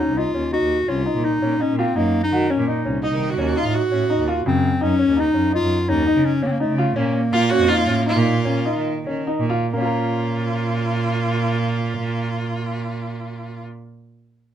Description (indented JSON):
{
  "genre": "contemporary instrumental, chamber music in an uneven meter",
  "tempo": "132-168 BPM",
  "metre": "7/4",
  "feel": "straight",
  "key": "Bb harmonic minor",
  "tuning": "A4 = 439 Hz",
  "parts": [
    { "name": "clear clarinet", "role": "melody", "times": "0.0-9.3 s", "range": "A3 to Gb4", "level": "-21 LUFS", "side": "left 2 dB", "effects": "none" },
    { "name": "warm grand piano", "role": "arpeggios", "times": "0.0-13.8 s", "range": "Db3 to Bb4", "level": "-24 LUFS", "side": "left 2 dB", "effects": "none" },
    { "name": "rich cello", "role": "bass", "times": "0.1-13.6 s", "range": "C2 to Eb3", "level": "-23 LUFS", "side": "right 3 dB", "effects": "none" },
    { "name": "clear viola", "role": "second line", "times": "3.0-13.6 s", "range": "Eb4 to Gb4", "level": "-24 LUFS", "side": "right 3 dB", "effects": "none" }
  ],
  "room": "moderate small room ambience, RT60 0.5 s",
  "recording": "heard from further back in the room",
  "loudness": "-18 LUFS",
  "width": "side -10 dB against mid",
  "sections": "0.0-9.7 A section; 9.7-12.9 B section",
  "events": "slowing down 6.6-9.7",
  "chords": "0.0 Ebm; 4.5 Gb5; 7.0 Bbm"
}